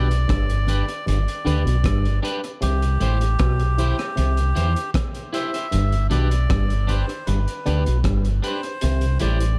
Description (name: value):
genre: roots reggae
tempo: 77 BPM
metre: 4/4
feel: straight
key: G major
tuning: A4 = 442 Hz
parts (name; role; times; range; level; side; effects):
- melodica; melody; 0.0-9.6 s; G4 to E5; -32 LUFS; equal; tape echo
- electric guitar at the edge of break-up; accompaniment; 0.0-9.4 s; D4 to C5; -35 LUFS; equal; tape echo
- auto-wah clav; riff; 0.0-9.4 s; G2 to E3; -32 LUFS; equal; overdrive
- reed electric piano; stabs; 0.0-9.4 s; D4 to C5; -34 LUFS; equal; overdrive, fast tremolo
- deep dub fingered electric bass; bass; 0.0-9.6 s; G1 to E2; -22 LUFS; equal; none
- crunchy breakbeat drum kit; drums; 0.1-9.6 s; hi-hat, kick drum, rim click; -30 LUFS; equal; none
- congas; percussion; 0.7-9.4 s; none; -34 LUFS; equal; none
room: small room ambience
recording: dark, warm production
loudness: -21 LUFS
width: mono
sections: 0.0-9.6 A section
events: none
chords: 0.0 G; 2.6 C; 5.7 G; 8.8 C